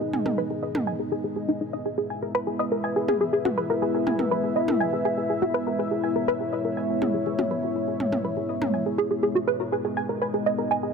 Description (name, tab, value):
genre	melodic techno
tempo	122 BPM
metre	4/4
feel	straight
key	unclear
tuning	A4 = 440 Hz
part	dark analog pad	sustained chords	0.0-10.9 s	G#3 to E5	-27 LUFS	left 1 dB	chorus, phaser
part	tight sequenced synth	arpeggios	0.0-10.9 s	D#4 to G#5	-26 LUFS	equal	chorus, phaser, ping-pong delay
part	electronic toms	drums	0.1-8.7 s	none	-30 LUFS	right 2 dB	none
room	light reverb, digital ambience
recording	none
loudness	-23 LUFS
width	side -5 dB against mid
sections	0.0-10.9 A section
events	none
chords	0.0 G#madd9; 1.9 E/G#; 9.7 G#madd9